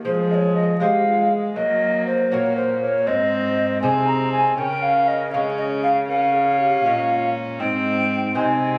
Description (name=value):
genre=classical, renaissance-style consort dance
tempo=79 BPM (dotted quarters)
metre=6/8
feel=straight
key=unclear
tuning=A4 = 440 Hz
part: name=mellow hollow tenor recorder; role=melody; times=0.0-8.8 s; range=Eb4 to C5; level=-30 LUFS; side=equal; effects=none
part: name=lute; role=accompaniment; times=0.0-8.8 s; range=Ab2 to Db5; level=-32 LUFS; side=equal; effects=none
part: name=warm viola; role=accompaniment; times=0.0-8.8 s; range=Ab3 to Db4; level=-29 LUFS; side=equal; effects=none
part: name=warm cello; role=bass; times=0.0-8.8 s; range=Ab2 to Ab3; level=-29 LUFS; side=equal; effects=none
part: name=mellow hollow tenor recorder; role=second line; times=0.1-8.8 s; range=C5 to Bb5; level=-22 LUFS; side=equal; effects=none
room=moderate recital hall reverb, RT60 1.5 s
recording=recorded on a phone in the room, club ambience, vinyl crackle, compression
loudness=-20 LUFS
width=mono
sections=0.0-8.8 A section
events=none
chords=0.0 Fm; 1.6 Gb; 3.1 Ab; 4.6 Db; 7.6 Ab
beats=| 0.04 0.80 | 1.56 2.32 | 3.07 3.83 | 4.58 5.33 | 6.09 6.84 | 7.60 8.35